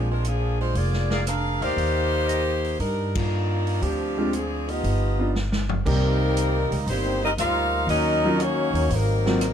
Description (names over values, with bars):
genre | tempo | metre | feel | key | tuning
jazz, big band swing | 118 BPM | 4/4 | swing 69% on 8ths | Eb major, C minor from 5.9 s | A4 = 440 Hz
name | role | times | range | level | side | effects
warm saxophone section | melody | 0.0-9.5 s | F3 to F5 | -25 LUFS | equal | none
warm baby grand piano | accompaniment | 0.0-0.2, 4.2-9.4 s | Gb3 to D5 | -27 LUFS | equal | none
upright bass | bass | 0.0-9.5 s | F1 to G2 | -25 LUFS | equal | none
swinging big-band drum kit | drums | 0.2-9.5 s | crash cymbal, hi-hat, kick drum, ride cymbal, rim click, snare drum, toms | -32 LUFS | equal | none
mellow trumpet section | stabs | 1.1-2.5 s | G4 to F5 | -29 LUFS | left 1 dB | none
bright trombone section | second line | 4.7-9.5 s | Eb3 to F4 | -29 LUFS | left 1 dB | none
room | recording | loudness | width
light reverb | none | -21 LUFS | side -8 dB against mid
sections
0.0-5.9 A section; 5.9-9.5 B section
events
band accent 3.1; drum fill 5.3-5.9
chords
0.0 Bb7; 1.8 Ebmaj7; 3.8 Dm7b5; 4.8 G7b13; 5.9 Cm7; 7.9 Ebm7; 8.9 Ab13